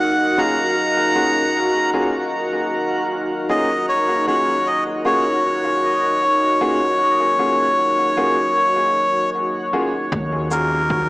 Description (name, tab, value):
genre	ambient dub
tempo	77 BPM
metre	4/4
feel	swing 54% on 16ths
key	Eb minor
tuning	A4 = 439 Hz
part	melodica	melody	0.0-11.1 s	Bb4 to Bb5	-18 LUFS	left 1 dB	dub echo
part	deep dark ambient pad	sustained chords	0.0-11.1 s	Eb4 to Eb5	-25 LUFS	equal	chorus, built-in reverb
part	backwards swelling texture	texture	0.0-10.1 s	Gb4	-27 LUFS	right 1 dB	built-in reverb
part	clear upright piano	stabs	0.4-10.8 s	Bb3 to Ab4	-25 LUFS	equal	dub echo
part	upright bass	bass	10.1-11.1 s	Eb2	-24 LUFS	equal	none
part	electronic kick drum	drums	10.1-11.1 s	none	-26 LUFS	equal	overdrive
part	cabasa	drums	10.5-10.7 s	none	-32 LUFS	equal	low-pass filter on perc, low-pass filter on room
room	wet echo chamber reverb, RT60 2.5 s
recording	small speaker sound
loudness	-16 LUFS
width	side -20 dB against mid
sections	0.0-10.1 A section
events	filter sweep on ambient pad 0.0-10.1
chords	0.0 Ebm11